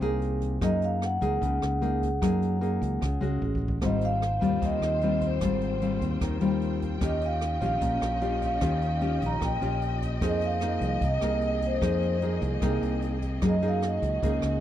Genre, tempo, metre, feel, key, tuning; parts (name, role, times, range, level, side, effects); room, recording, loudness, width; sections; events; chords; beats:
bossa nova; 150 BPM; 4/4; straight; F minor; A4 = 442 Hz
nylon-string guitar; accompaniment; 0.0-14.6 s; Ab2 to Ab4; -28 LUFS; left 2 dB
fingered electric bass; bass; 0.0-14.6 s; Ab1 to Gb2; -30 LUFS; equal
jazz brush drum kit; drums; 0.0-14.5 s; hi-hat, kick drum, rim click; -35 LUFS; right 1 dB
vibraphone with soft mallets; melody; 0.6-14.6 s; C5 to Bb5; -30 LUFS; right 1 dB
warm studio string section; sustained chords; 3.8-14.6 s; Bb3 to G5; -38 LUFS; left 2 dB
little or no reverb; dry, close 1970s-style studio recording; -24 LUFS; side -11 dB against mid
0.0-14.6 A section
drum fill 3.4-3.8
0.0 Fm7 (rootless); 0.6 Gb69; 3.4 A6; 3.8 Abmaj13; 7.0 Eb9; 10.2 Fm11; 13.4 Gb69
0.22 | 0.62 1.02 1.42 1.82 | 2.22 2.62 3.02 3.42 | 3.82 4.22 4.62 5.02 | 5.42 5.82 6.22 6.62 | 7.02 7.42 7.82 8.22 | 8.62 9.02 9.42 9.82 | 10.22 10.62 11.02 11.42 | 11.82 12.22 12.62 13.02 | 13.42 13.82 14.22